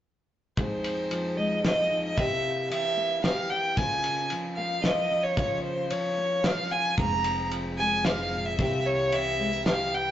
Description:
indie folk with a building arrangement; 112 BPM; 3/4; straight; F minor; A4 = 440 Hz
rich fiddle; melody; 0.6-10.1 s; C5 to Bb5; -27 LUFS; right 1 dB
fingerpicked steel-string acoustic guitar; accompaniment; 0.6-10.1 s; F2 to Ab4; -31 LUFS; left 2 dB
cloth-damped thuddy drum kit; drums; 0.6-9.8 s; kick drum, ride cymbal, snare drum; -31 LUFS; equal
upright bass; bass; 7.0-10.1 s; F1 to C2; -36 LUFS; equal
moderate stone room reverb, RT60 1.3 s; rough rehearsal-room recording, tube saturation, nothing above 7.7 kHz; -24 LUFS; side -11 dB against mid
0.6-10.1 A section
0.6 Fm7; 2.2 C7; 3.8 Bbm/Db; 7.0 Fm; 8.6 C7

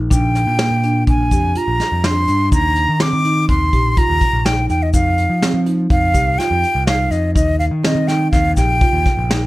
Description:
progressive instrumental, band music in an uneven meter; 124 BPM; 5/4; straight; A4 = 441 Hz
overdriven picked electric bass; bass; 0.0-9.5 s; Bb1 to F3; -18 LUFS; equal
breathy bright concert flute; melody; 0.1-9.5 s; Eb5 to D6; -18 LUFS; equal; plate reverb
marimba with soft mallets; arpeggios; 0.1-9.4 s; Bb3 to G4; -22 LUFS; right 1 dB; plate reverb
vintage brush drum kit; drums; 0.1-9.4 s; hi-hat, kick drum, snare drum; -18 LUFS; equal
tube shaker; percussion; 0.1-8.8 s; -33 LUFS; left 6 dB
light reverb; -13 LUFS; side -18 dB against mid
0.0-9.5 A section
0.1 Bb; 2.5 Eb5; 4.9 F5; 7.4 Eb

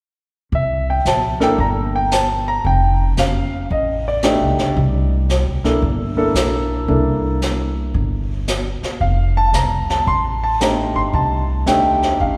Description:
jazz piano trio; 113 BPM; 4/4; swing 66% on 8ths; A4 = 440 Hz
warm grand piano; melody; 0.5-12.4 s; A3 to C6; -21 LUFS; equal
upright bass; bass; 0.5-12.4 s; F1 to Eb2; -22 LUFS; equal
jazz brush drum kit; drums; 0.5-12.4 s; brushed snare drum, hi-hat, kick drum, snare drum; -27 LUFS; equal
wet church reverb, RT60 2.7 s; recorded in a church or concert hall; -18 LUFS; mono
0.5-12.4 A section
0.5 C13; 2.6 F13; 4.8 C13; 9.0 F13

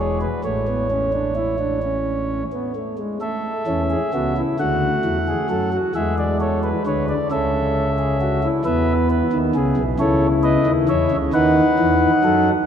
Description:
classical, baroque-style 4-part fugue for pipe organ; 44 BPM (dotted quarters); 6/8; straight; A major; A4 = 440 Hz
chamber organ, principal; solo; 0.0-12.5 s; E1 to F#5; -17 LUFS; equal
wet cathedral reverb, RT60 6.2 s; -17 LUFS; side -8 dB against mid
0.0-3.2 A section; 3.2-12.7 B section
0.4 A; 4.6 D; 6.0 E7; 7.3 A/C#; 8.7 E; 10.0 A/C#; 11.3 B7/D#

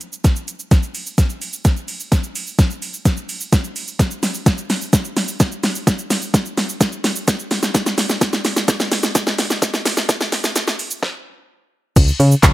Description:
dance-pop; 128 BPM; 4/4; straight; A4 = 441 Hz
smooth R&B drum kit; drums; 0.0-12.5 s; crash cymbal, handclaps, hi-hat, kick drum, shaker, snare drum; -16 LUFS; equal; overdrive
solid FM bass; bass; 12.0-12.5 s; Db2 to Db3; -13 LUFS; equal; sidechain pumping
light reverb; high-pass filter; -16 LUFS; side -16 dB against mid
0.0-12.0 A section
build-up 0.0-12.0; drum fill 0.0-11.0; filter sweep 0.0-12.0; stop 11.0-12.0

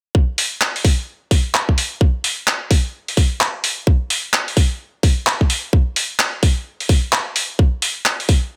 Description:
UK garage, two-step garage; 129 BPM; 4/4; swing 62% on 16ths
electronic kick drum; drums; 0.1-8.4 s; -17 LUFS; equal
breakbeat sampler-style drum kit; drums; 0.4-8.4 s; handclaps, hi-hat; -21 LUFS; equal
little or no reverb; -18 LUFS; mono
0.1-8.6 A section

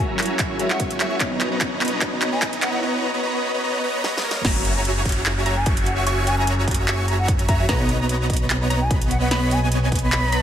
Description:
future bass; 148 BPM; 4/4; swing 54% on 16ths, half-time; A4 = 443 Hz
clear concert grand piano; accompaniment; 0.0-4.3 s; F#3 to E4; -33 LUFS; left 4 dB; sidechain pumping, digital delay
shimmering ambient pad; sustained chords; 0.1-2.8 s; F#3 to A#4; -31 LUFS; right 1 dB; chorus, built-in reverb, sidechain pumping
dense compressed supersaw; riff; 0.0-10.4 s; A#3 to C#6; -24 LUFS; right 1 dB; sidechain pumping, low-pass filter, digital delay
fat analog bass; bass; 0.0-10.4 s; F#1 to B1; -24 LUFS; equal; sidechain pumping, high-pass filter
riser and downlifter; sound effects; 0.5-7.7 s; -31 LUFS; equal
dubstep drum kit; drums; 0.2-10.4 s; crash cymbal, handclaps, hi-hat, snare drum; -25 LUFS; right 1 dB; small room ambience
electronic kick drum; drums; 0.4-10.0 s; -24 LUFS; equal; small room ambience
breathy mellow silver concert flute; melody; 0.7-2.8, 5.6-10.4 s; E5 to B5; -29 LUFS; left 1 dB; sidechain pumping, digital delay
wide unison pluck; arpeggios; 4.4-10.4 s; G#5 to C#6; -31 LUFS; equal; sidechain pumping, digital delay
moderate lush hall reverb, RT60 2.3 s; high-pass filter; -18 LUFS; side -10 dB against mid
0.0-4.4 A section; 4.4-10.4 B section
build-up 0.0-4.4; drum fill 0.0-2.8, 4.0-4.4; filter sweep on ambient pad 0.0-4.4; drop 4.4-10.4
0.0 F#7; 1.2 Bmaj7; 4.2 A#madd11; 4.4 F#7; 7.7 Bmaj7

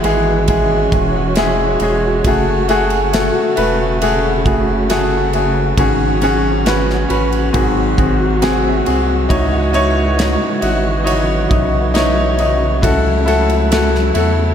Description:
pop ballad; 68 BPM; 4/4; straight; C# minor; A4 = 438 Hz
clear upright piano; accompaniment; 0.0-14.5 s; G#2 to G#5; -15 LUFS; left 2 dB; slapback echo
dark studio string section; sustained chords; 0.0-14.5 s; B#2 to F#4; -20 LUFS; right 2 dB
saturated sub bass; bass; 0.0-14.5 s; E1 to E2; -19 LUFS; right 1 dB
modern studio drum kit; drums; 0.0-14.4 s; kick drum, ride cymbal, snare drum; -21 LUFS; right 1 dB
downlifter; sound effects; 0.0-2.2 s; barely audible
moderate lush hall reverb, RT60 2.5 s; big arena sound; -12 LUFS; side -8 dB against mid
0.0-14.5 A section
upright piano fill 0.5-2.2, 8.0-9.3
0.0 Eadd9; 2.2 F#madd9; 5.8 G#7sus4; 7.5 G#7; 9.3 C#madd9; 12.8 F#m7/C#

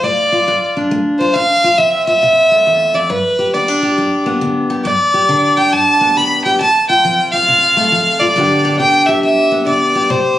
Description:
country; 137 BPM; 4/4; swing 64% on 8ths; A4 = 436 Hz
clear fiddle; melody; 0.0-10.4 s; B4 to B5; -12 LUFS; equal
picked steel-string acoustic guitar; accompaniment; 0.0-10.4 s; E2 to G4; -17 LUFS; left 1 dB
light reverb; recorded on a phone in the room, club reverb; -10 LUFS; side -13 dB against mid
0.0-10.4 A section
0.0 Dm; 1.3 F; 3.1 G; 6.6 F; 8.4 G

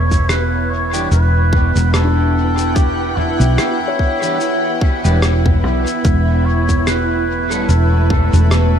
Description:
ambient dub; 73 BPM; 4/4; swing 56% on 16ths; E dorian; A4 = 440 Hz
trumpet with cup mute; melody; 0.0-8.8 s; E4 to C#5; -22 LUFS; left 1 dB; vintage 12-bit sampler grit, dub echo
granular cloud pad; sustained chords; 0.0-8.8 s; A3 to G5; -22 LUFS; equal; built-in reverb
hollow-body short-scale fingered electric bass; bass; 0.0-8.8 s; E1 to B1; -15 LUFS; equal
wind-like tuned noise texture; texture; 0.0-8.8 s; B3 to B4; -24 LUFS; right 3 dB; built-in reverb
electronic kick drum; drums; 0.1-8.3 s; -15 LUFS; equal
lo-fi sampler-style drum kit; drums; 0.1-8.7 s; rim click, shaker, toms; -23 LUFS; equal; dub echo
electric guitar at the edge of break-up; stabs; 0.9-7.7 s; E3 to A4; -28 LUFS; right 1 dB; dub echo
felt-muted upright piano; arpeggios; 2.0-8.8 s; D4 to C#5; -27 LUFS; left 6 dB; tape echo
light reverb; -13 LUFS; side -8 dB against mid
0.0-8.8 A section
0.0 Em7; 6.0 A7/E

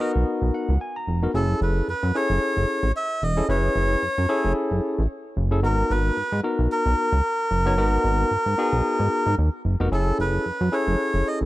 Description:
early-eighties boogie funk; 112 BPM; 4/4; swing 56% on 16ths; A4 = 435 Hz
melodica; melody; 0.0-11.4 s; A4 to E5; -25 LUFS; equal
barky tine electric piano; accompaniment; 0.0-11.4 s; B3 to A#5; -26 LUFS; left 1 dB
chorused synth bass; bass; 0.2-11.5 s; E1 to G#2; -22 LUFS; equal
studio ambience; -20 LUFS; side -17 dB against mid
0.0-9.9 A section; 9.9-11.5 A section
tine electric piano fill 0.3-1.3
0.0 G#m9 (rootless); 1.3 F#m9; 5.6 G#m9; 9.9 F#m9

